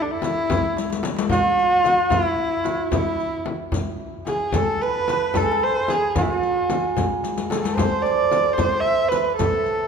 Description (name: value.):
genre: Persian modal ensemble.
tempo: 74 BPM (dotted quarters).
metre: 6/8.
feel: straight.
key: A avaz esfahan.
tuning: A4 = 440 Hz.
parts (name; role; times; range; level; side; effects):
warm kamancheh; melody; 0.0-9.9 s; D4 to E5; -22 LUFS; equal; none.
frame drum; percussion; 0.2-9.5 s; none; -28 LUFS; left 4 dB; none.
riq; percussion; 0.2-9.7 s; none; -30 LUFS; left 6 dB; none.
tombak; percussion; 0.2-9.5 s; none; -30 LUFS; right 2 dB; none.
santur; second line; 1.3-9.9 s; E4 to E5; -24 LUFS; right 4 dB; none.
room: moderate concert hall reverb, RT60 2.3 s.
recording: minimal, uncompressed stereo recording.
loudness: -19 LUFS.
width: side -6 dB against mid.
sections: 0.0-1.3 A section; 1.3-9.9 B section.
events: drum fill 0.8-1.3, 7.2-7.8.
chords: none.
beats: 0.50 | 1.31 2.12 | 2.92 3.73 | 4.54 5.35 | 6.16 6.97 | 7.78 8.59 | 9.39.